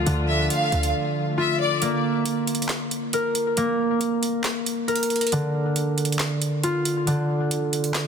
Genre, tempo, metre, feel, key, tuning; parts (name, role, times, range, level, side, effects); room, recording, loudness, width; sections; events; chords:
hip hop, trap; 137 BPM; 4/4; half-time; D minor; A4 = 440 Hz
muted studio string section; sustained chords; 0.0-1.8 s; D3 to F4; -31 LUFS; left 2 dB
concert harp; arpeggios; 0.0-8.1 s; D3 to Bb4; -23 LUFS; equal; low-pass filter, ping-pong delay
short 808-style bass; bass; 0.0-0.9 s; D2; -26 LUFS; equal
trap drum kit; drums; 0.1-8.1 s; handclaps, hi-hat, snare drum; -28 LUFS; right 2 dB
clear chamber violin section; second line; 0.3-1.8 s; D5 to F5; -26 LUFS; left 2 dB; ping-pong delay
light reverb, studio reverb; dense, heavily limited modern master; -21 LUFS; side -6 dB against mid
0.0-1.8 A section; 1.8-8.1 B section
drums muted 0.9-1.8; kick muted 1.8-8.1
0.0 Dm; 1.8 N.C.; 5.3 Dm